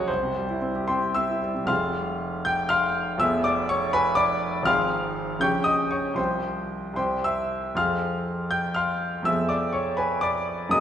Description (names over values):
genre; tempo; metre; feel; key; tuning
classical, romantic character piece for solo piano; 72-83 BPM (dotted quarters); 6/8; rubato; F minor; A4 = 440 Hz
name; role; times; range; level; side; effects
bright concert grand piano; solo; 0.0-10.8 s; F1 to G6; -22 LUFS; equal; none
room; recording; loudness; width
wet scoring stage reverb, RT60 1.6 s; small room ambience; -23 LUFS; side -10 dB against mid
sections
0.0-1.7 A section; 1.7-10.8 B section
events
none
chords
0.1 C; 1.7 Fm; 3.2 Fdim7; 4.7 Fm/Ab; 5.4 Gdim/Bb; 6.2 Csus4; 7.0 C; 7.8 Fm; 9.3 Fdim7